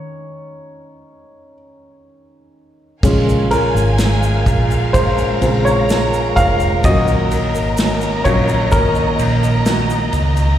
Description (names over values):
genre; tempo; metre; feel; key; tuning
pop ballad; 63 BPM; 4/4; straight; unclear; A4 = 440 Hz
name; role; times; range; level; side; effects
warm baby grand piano; accompaniment; 0.0-10.6 s; Db3 to F5; -19 LUFS; left 1 dB; slapback echo
warm studio string section; sustained chords; 3.0-10.6 s; Bb4 to Bb5; -22 LUFS; equal; none
fingerpicked steel-string acoustic guitar; arpeggios; 3.0-10.6 s; Bb2 to Gb4; -22 LUFS; equal; tape echo, slapback echo
vintage muted fingered electric bass; bass; 3.0-10.6 s; F1 to Db2; -17 LUFS; equal; none
unplugged drum kit; drums; 3.0-10.6 s; crash cymbal, kick drum, ride cymbal, snare drum; -21 LUFS; equal; none
tube shaker; percussion; 3.0-10.6 s; none; -35 LUFS; right 2 dB; none
room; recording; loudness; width
light reverb; live gig heard through the venue's PA, recital hall reverb; -13 LUFS; side -11 dB against mid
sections
0.0-3.0 A section; 3.0-10.6 B section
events
grand piano solo 0.0-3.0, 3.0-10.6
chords
0.0 Dbsus2/Eb; 3.0 Bbm7; 6.8 Ebm7